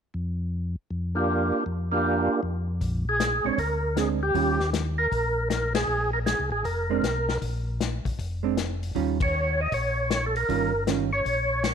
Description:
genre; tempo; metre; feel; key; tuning
soul jazz organ trio; 157 BPM; 4/4; swing 65% on 8ths; unclear; A4 = 440 Hz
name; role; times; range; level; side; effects
mellow tonewheel organ; bass; 0.1-11.7 s; F1 to F2; -29 LUFS; left 1 dB; slow rotary speaker
percussive tonewheel organ; melody; 1.1-11.7 s; Bb3 to Eb5; -25 LUFS; right 1 dB; slow rotary speaker, overdrive, chorus vibrato
warm soul drum kit; drums; 2.8-11.7 s; hi-hat, kick drum, ride cymbal, snare drum; -31 LUFS; left 6 dB; none
hollow-body jazz guitar; accompaniment; 3.4-4.6, 6.9-11.1 s; Eb3 to F4; -28 LUFS; right 12 dB; none
room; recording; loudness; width
light reverb, small room reverb; 1960s-style stereo with parts hard left and right; -24 LUFS; side -7 dB against mid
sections
0.0-2.8 A section; 2.8-11.7 B section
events
band accent 5.7, 9.1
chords
0.0 Bb6/F; 2.8 Bb9; 4.3 Eb9; 5.9 Bb7sus2; 8.9 Eb9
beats
0.13 0.52 0.90 | 1.28 1.67 2.05 2.43 | 2.82 3.20 3.58 3.97 | 4.35 4.73 5.12 5.50 | 5.88 6.27 6.65 7.03 | 7.42 7.80 8.18 8.56 | 8.95 9.33 9.71 10.10 | 10.48 10.86 11.25 11.63

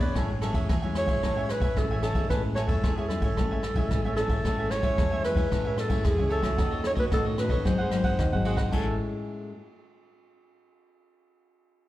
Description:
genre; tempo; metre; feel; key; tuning
samba and choro; 112 BPM; 4/4; straight; A major; A4 = 440 Hz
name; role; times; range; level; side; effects
warm clarinet; melody; 0.0-9.0 s; G#4 to C#5; -30 LUFS; equal; none
cavaquinho; accompaniment; 0.0-8.9 s; F#4 to G#5; -35 LUFS; right 3 dB; slapback echo
nylon-string guitar; accompaniment; 0.0-9.5 s; G#2 to G#4; -32 LUFS; left 3 dB; none
upright bass; bass; 0.0-9.0 s; G#1 to A2; -30 LUFS; equal; none
jazz brush drum kit; drums; 0.0-8.9 s; crash cymbal, kick drum, ride cymbal, rim click; -29 LUFS; equal; none
room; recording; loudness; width
light reverb, small room ambience; live gig heard through the venue's PA, club reverb; -24 LUFS; side -15 dB against mid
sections
0.0-4.4 A section; 4.4-8.7 B section; 8.7-10.9 C section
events
none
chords
0.2 Amaj7; 6.6 D#m7b5; 7.7 G#7; 8.7 Amaj7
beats
| 0.16 0.70 1.23 1.77 | 2.30 2.84 3.37 3.91 | 4.44 4.98 5.52 6.05 | 6.59 7.12 7.66 8.19 | 8.73 9.26

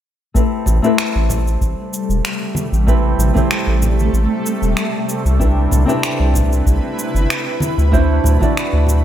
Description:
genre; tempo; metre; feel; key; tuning
sunset chillout; 95 BPM; 4/4; swing 53% on 16ths; A dorian; A4 = 440 Hz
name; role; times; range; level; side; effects
nylon-string guitar; accompaniment; 0.3-9.0 s; A3 to D5; -20 LUFS; moving between left 5 dB and right 4 dB; auto-pan, low-pass filter, ping-pong delay
electronic kick drum; drums; 0.3-8.5 s; none; -18 LUFS; equal; none
shimmering ambient pad; sustained chords; 1.8-9.0 s; C3 to B4; -22 LUFS; equal; chorus, built-in reverb, phaser
electronic cabasa and finger snaps; drums; 0.4-9.0 s; none; -24 LUFS; equal; gated reverb
round analog bass; bass; 0.7-9.0 s; E1 to D2; -15 LUFS; equal; none
congas; percussion; 0.7-9.0 s; none; -25 LUFS; right 1 dB; none
room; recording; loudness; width
light reverb; bright 1980s-style digital production; -14 LUFS; side -11 dB against mid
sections
0.4-9.0 A section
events
none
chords
0.4 Am9; 5.4 Cmaj7; 7.9 D7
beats
| 0.35 0.98 1.61 2.25 | 2.88 3.51 4.14 4.77 | 5.40 6.04 6.67 7.30 | 7.93 8.56

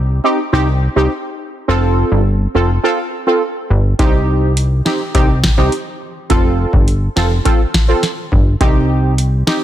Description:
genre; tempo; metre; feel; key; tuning
dancehall; 104 BPM; 4/4; straight; C dorian; A4 = 440 Hz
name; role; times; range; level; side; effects
plucky analog bass; bass; 0.0-9.4 s; F1 to C2; -14 LUFS; equal; none
synth brass stab; accompaniment; 0.2-9.6 s; C4 to A4; -17 LUFS; right 1 dB; chorus
booming analog drum machine; drums; 4.0-9.6 s; hi-hat, kick drum, snare drum; -14 LUFS; equal; none
room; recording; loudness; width
light reverb; dense, heavily limited modern master; -12 LUFS; side -12 dB against mid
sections
0.0-9.6 A section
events
none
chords
0.0 Cm; 1.7 F; 4.0 Cm; 6.3 F; 8.6 Cm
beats
0.53 1.11 | 1.68 2.26 2.84 3.42 | 3.99 4.57 5.15 5.72 | 6.30 6.88 7.45 8.03 | 8.61 9.18

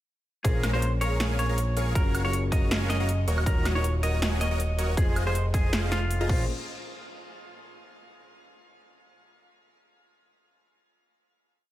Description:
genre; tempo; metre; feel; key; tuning
future bass; 159 BPM; 4/4; swing 54% on 16ths, half-time; Bb minor; A4 = 441 Hz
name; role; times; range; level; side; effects
semi-hollow electric guitar; melody; 0.4-6.4 s; F4 to Eb5; -34 LUFS; equal; sidechain pumping, digital delay
felt-muted upright piano; accompaniment; 0.4-6.5 s; Bb2 to Eb5; -37 LUFS; left 3 dB; sidechain pumping
dense compressed supersaw; riff; 0.4-6.4 s; F4 to Db6; -34 LUFS; right 1 dB; sidechain pumping
fat analog bass; bass; 0.4-6.5 s; Eb1 to Bb1; -27 LUFS; equal; sidechain pumping
big-room dance drum kit; drums; 0.4-6.4 s; crash cymbal, hi-hat, snare drum, woodblock; -33 LUFS; equal; none
electronic kick drum; drums; 0.4-6.4 s; none; -25 LUFS; equal; none
room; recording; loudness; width
little or no reverb; none; -23 LUFS; side -14 dB against mid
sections
0.4-6.5 drop; 6.5-8.0 final hit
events
drop 0.4-6.5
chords
0.4 Bbm7; 2.0 Gbmaj7; 3.3 Ebm7; 5.0 Fm7; 6.3 Bbm7; 6.5 N.C.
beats
| 0.45 0.82 1.20 1.58 | 1.96 2.33 2.71 3.09 | 3.46 3.84 4.22 4.60 | 4.97 5.35 5.73 6.11 | 6.48

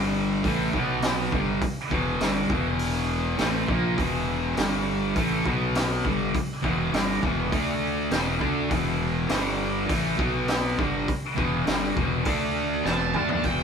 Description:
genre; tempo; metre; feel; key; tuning
garage rock duo or trio; 101 BPM; 4/4; straight; E minor; A4 = 441 Hz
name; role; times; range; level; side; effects
fuzz guitar; riff; 0.0-13.6 s; E2 to D4; -25 LUFS; equal; distortion
fuzz fingered electric bass; bass; 0.0-13.6 s; E1 to D2; -31 LUFS; equal; overdrive, tube saturation
raw garage drum kit; drums; 0.4-13.6 s; hi-hat, kick drum, snare drum, toms; -29 LUFS; equal; none
octave-fuzz lead guitar; melody; 12.9-13.6 s; G5 to A5; -29 LUFS; right 5 dB; distortion
room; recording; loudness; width
moderate stone room reverb, RT60 1.1 s; band playing live in one room; -23 LUFS; side -6 dB against mid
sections
0.0-13.4 A section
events
drum fill 12.9-13.4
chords
0.4 A5; 0.7 B5; 1.3 Em; 4.6 G5; 5.2 A5; 5.5 B5; 6.0 Em; 7.5 D5; 8.1 E5; 9.3 G5; 9.9 A5; 10.2 B5; 10.8 Em; 12.3 D5; 12.9 E5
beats
0.44 1.02 | 1.61 2.20 2.79 3.38 | 3.98 4.57 5.16 5.75 | 6.34 6.94 7.53 8.12 | 8.72 9.31 9.90 10.49 | 11.09 11.68 12.27 12.86 | 13.45

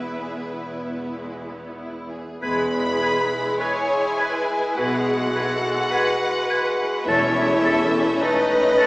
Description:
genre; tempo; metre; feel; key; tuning
classical, slow romantic movement for symphony orchestra; 46-53 BPM; 4/4; rubato; E major; A4 = 441 Hz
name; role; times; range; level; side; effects
rich studio violin section; melody; 0.0-8.9 s; D#5 to B5; -27 LUFS; left 1 dB; none
rich studio violin section; second line; 0.0-8.9 s; G#3 to B4; -28 LUFS; equal; none
rich studio viola section; accompaniment; 0.0-8.9 s; B3 to C#5; -25 LUFS; equal; none
rich studio cello section; bass; 0.0-8.0 s; E2 to B2; -31 LUFS; equal; none
rich studio double bass section; bass; 0.0-8.0 s; E1 to B1; -36 LUFS; equal; none
bright flute section; second line; 2.4-8.9 s; G#6 to A6; -28 LUFS; left 1 dB; none
clear oboe; second line; 2.4-8.9 s; A4 to B4; -30 LUFS; equal; none
warm clarinet; second line; 2.4-8.9 s; D#4 to B4; -26 LUFS; equal; none
warm French horn section; sustained chords; 2.4-7.5 s; A3 to A4; -29 LUFS; equal; none
timpani; percussion; 7.1-8.7 s; E2; -37 LUFS; equal; none
room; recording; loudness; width
wet recital hall reverb, RT60 1.5 s; heard from further back in the room, small speaker sound; -19 LUFS; side -21 dB against mid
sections
0.0-2.4 A section; 2.4-8.9 A section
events
none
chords
0.0 E; 7.1 A/E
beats
1.15 | 2.42 3.60 4.77 5.91 | 7.07 8.21

